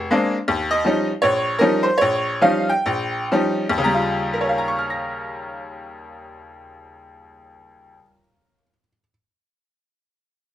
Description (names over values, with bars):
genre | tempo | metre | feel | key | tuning
solo jazz | 115-164 BPM | 4/4 | swing 64% on 8ths | Eb mixolydian | A4 = 439 Hz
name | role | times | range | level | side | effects
tack piano | solo | 0.0-9.1 s | Bb1 to Bb6 | -18 LUFS | equal | none
room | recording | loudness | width
little or no reverb | recorded outdoors, with no room sound | -18 LUFS | side -12 dB against mid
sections
0.0-3.8 A section; 3.8-8.0 B section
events
slowing down 0.5-3.8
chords
0.5 Eb9